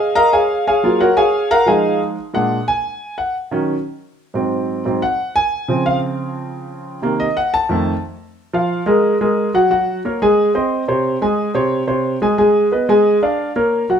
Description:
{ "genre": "jazz", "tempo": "179 BPM", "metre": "4/4", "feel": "straight", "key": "Bb minor", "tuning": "A4 = 441 Hz", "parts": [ { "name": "warm concert grand piano", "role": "solo", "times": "0.0-14.0 s", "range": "F2 to Bb5", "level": "-14 LUFS", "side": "equal", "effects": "none" } ], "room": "moderate large studio reverb, RT60 1.0 s", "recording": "band playing live in one room", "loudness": "-15 LUFS", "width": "side -8 dB against mid", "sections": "0.0-8.4 A section; 8.4-14.0 B section", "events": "grand piano solo 0.0-8.4", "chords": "0.3 Gbmaj9; 1.7 Fm7; 2.3 Bbaug7; 3.0 Ebm7; 4.4 Ab7; 5.7 Dbmaj7; 7.0 Cm7b5; 7.7 F7; 8.4 Bb5; 9.7 Gbadd9; 10.4 Ab; 11.0 Db5; 12.4 Abm; 13.1 Bb7", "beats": "| 0.33 0.66 1.00 1.33 | 1.67 2.01 2.34 2.68 | 3.01 3.35 3.68 4.02 | 4.35 4.69 5.02 5.36 | 5.69 6.02 6.36 6.69 | 7.03 7.36 7.70 8.03 | 8.37 8.70 9.04 9.37 | 9.71 10.04 10.38 10.71 | 11.05 11.38 11.72 12.05 | 12.39 12.72 13.06 13.39 | 13.73" }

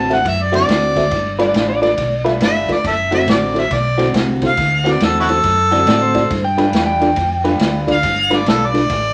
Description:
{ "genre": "electric blues shuffle", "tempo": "139 BPM", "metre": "4/4", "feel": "swing 64% on 8ths", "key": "unclear", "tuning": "A4 = 441 Hz", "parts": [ { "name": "warm harmonica", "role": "melody", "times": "0.0-9.1 s", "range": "E4 to A5", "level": "-18 LUFS", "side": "equal", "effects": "overdrive" }, { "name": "electric guitar through a small old amp", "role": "riff", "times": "0.0-8.8 s", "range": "D3 to B4", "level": "-25 LUFS", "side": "equal", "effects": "none" }, { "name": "deep dub fingered electric bass", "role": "bass", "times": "0.0-9.1 s", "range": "F#1 to A2", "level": "-25 LUFS", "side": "equal", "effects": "none" }, { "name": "mellow reed electric piano", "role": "accompaniment", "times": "0.1-8.8 s", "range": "D4 to E5", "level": "-21 LUFS", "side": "equal", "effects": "none" }, { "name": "vintage drum kit", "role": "drums", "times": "0.1-9.0 s", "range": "kick drum, ride cymbal, snare drum", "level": "-23 LUFS", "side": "equal", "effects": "none" }, { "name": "electric slide guitar", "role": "second line", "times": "1.4-2.2, 5.9-7.8 s", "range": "C5 to G5", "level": "-21 LUFS", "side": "equal", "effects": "none" } ], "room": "moderate studio ambience, RT60 0.5 s", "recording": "vinyl crackle", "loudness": "-15 LUFS", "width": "mono", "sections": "0.0-9.1 A section", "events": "none", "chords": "0.0 D7; 1.1 G7; 2.8 D7; 6.3 G7", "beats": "0.25 0.68 | 1.12 1.55 1.98 2.41 | 2.84 3.28 3.71 4.14 | 4.57 5.00 5.44 5.87 | 6.30 6.73 7.17 7.60 | 8.03 8.46 8.89" }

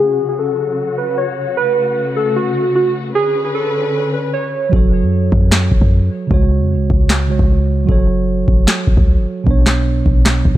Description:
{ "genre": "hip hop, trap", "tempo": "152 BPM", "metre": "4/4", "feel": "half-time", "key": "F# minor", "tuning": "A4 = 435 Hz", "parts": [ { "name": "warbly lo-fi synth keys", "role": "melody", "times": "0.0-4.7 s", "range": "F#4 to C#5", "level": "-17 LUFS", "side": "equal", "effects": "chorus, low-pass filter, ping-pong delay" }, { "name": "dark symphonic string section", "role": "sustained chords", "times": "0.0-4.7 s", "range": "C#3 to B4", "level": "-22 LUFS", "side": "left 2 dB", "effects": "low-pass filter" }, { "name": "mellow tine electric piano", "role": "accompaniment", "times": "4.7-10.6 s", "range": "B2 to C#5", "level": "-18 LUFS", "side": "right 4 dB", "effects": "none" }, { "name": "warm 808-style bass", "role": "bass", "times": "4.7-10.6 s", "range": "F#1 to F#2", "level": "-15 LUFS", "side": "equal", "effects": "none" }, { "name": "booming analog drum machine", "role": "drums", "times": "4.7-10.6 s", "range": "handclaps, kick drum, snare drum", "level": "-13 LUFS", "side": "equal", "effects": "none" } ], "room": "digital ambience", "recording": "dark, warm production", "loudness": "-13 LUFS", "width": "side -14 dB against mid", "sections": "0.0-4.7 A section; 4.7-10.6 B section", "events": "filter sweep 0.0-4.7; hi-hats muted 4.7-10.6", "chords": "0.0 C#sus4; 1.6 F#m; 3.2 Bmadd9; 4.7 F#m; 6.3 C#sus4; 7.9 F#m; 9.5 Bmadd9", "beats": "0.39 0.78 1.18 | 1.57 1.97 2.36 2.76 | 3.15 3.54 3.94 4.33 | 4.73 5.12 5.52 5.91 | 6.31 6.70 7.10 7.49 | 7.89 8.28 8.68 9.07 | 9.47 9.86 10.26" }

